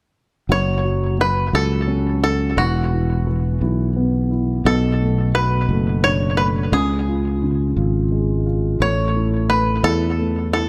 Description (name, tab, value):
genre	six-eight pop ballad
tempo	58 BPM (dotted quarters)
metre	6/8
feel	straight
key	F# minor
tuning	A4 = 441 Hz
part	bluegrass banjo	melody	0.5-10.7 s	F#4 to C#5	-24 LUFS	equal	tape echo
part	dark grand piano	accompaniment	0.5-10.7 s	B2 to F#4	-25 LUFS	equal	tape echo
part	sustaining fretless electric bass	bass	0.5-10.7 s	E1 to E2	-22 LUFS	equal	none
room	light reverb, small room reverb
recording	echo-heavy mix, lossy compression artefacts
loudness	-19 LUFS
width	mono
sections	0.5-10.7 A section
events	none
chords	0.5 F#m; 2.6 Esus2; 4.7 Bm7; 6.7 C#; 8.8 A